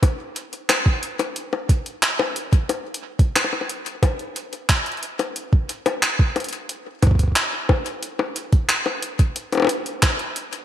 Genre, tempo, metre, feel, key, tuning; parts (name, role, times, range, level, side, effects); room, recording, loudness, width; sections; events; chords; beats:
IDM; 90 BPM; 4/4; straight
electronic kick drum; drums; 0.0-10.2 s; -16 LUFS; right 1 dB; overdrive, small room ambience
jungle sampler-style drum kit; drums; 0.0-10.6 s; bongos, handclaps, hi-hat; -22 LUFS; left 2 dB; small room ambience, gated reverb, ping-pong delay
moderate lush hall reverb, RT60 1.9 s; bright 1980s-style digital production; -19 LUFS; side -11 dB against mid
0.0-10.6 A section
0.03 0.69 | 1.36 2.03 2.69 3.36 | 4.03 4.69 5.36 6.03 | 6.69 7.36 8.03 8.69 | 9.36 10.03